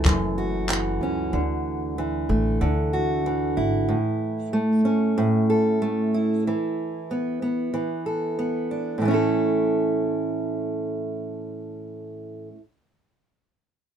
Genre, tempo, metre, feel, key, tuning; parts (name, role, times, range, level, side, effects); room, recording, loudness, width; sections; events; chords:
acoustic pop; 94 BPM; 4/4; straight; A major; A4 = 438 Hz
fingerpicked steel-string acoustic guitar; accompaniment; 0.0-12.6 s; F#2 to A4; -22 LUFS; right 1 dB
upright bass; bass; 0.0-3.9 s; F#1 to D2; -28 LUFS; left 1 dB
jazz brush drum kit; drums; 0.1-0.8 s; handclaps, kick drum; -22 LUFS; left 1 dB
light reverb; minimal, uncompressed stereo recording; -22 LUFS; side -8 dB against mid
0.0-9.0 A section; 9.0-11.6 B section
0.0 F#m7; 1.3 Dadd9; 3.9 A; 6.5 E7sus4; 9.0 A